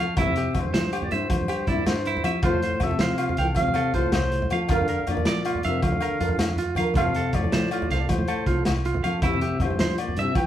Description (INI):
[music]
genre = highlife guitar band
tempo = 106 BPM (dotted quarters)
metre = 12/8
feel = straight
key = F major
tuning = A4 = 441 Hz
[part]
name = nylon-string guitar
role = accompaniment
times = 0.0-10.3 s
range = F3 to Bb4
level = -33 LUFS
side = left 2 dB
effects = none
[part]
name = clean electric guitar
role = arpeggios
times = 0.0-10.3 s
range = E4 to F5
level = -30 LUFS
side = right 5 dB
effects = none
[part]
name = fingered electric bass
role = bass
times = 0.0-10.5 s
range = C2 to F3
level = -28 LUFS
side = equal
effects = none
[part]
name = congas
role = percussion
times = 0.1-10.5 s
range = none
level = -32 LUFS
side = right 2 dB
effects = none
[part]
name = warm clarinet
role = melody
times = 0.2-10.5 s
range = C5 to G5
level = -29 LUFS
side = equal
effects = none
[part]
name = trombone with bucket mute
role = second line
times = 0.2-10.5 s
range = G2 to E3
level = -31 LUFS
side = left 4 dB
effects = none
[part]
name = crunchy breakbeat drum kit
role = drums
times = 0.2-10.4 s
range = hi-hat, kick drum, snare drum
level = -28 LUFS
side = equal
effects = none
[part]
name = agogo bells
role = percussion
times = 0.2-10.5 s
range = none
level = -33 LUFS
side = left 7 dB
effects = none
[sound]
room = moderate large studio reverb, RT60 1.2 s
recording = band playing live in one room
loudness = -21 LUFS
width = side -11 dB against mid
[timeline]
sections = 0.0-10.5 A section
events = drum fill 6.4-7.0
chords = 0.2 C/F; 2.4 F; 4.7 Bb/F; 7.0 F; 9.2 C/F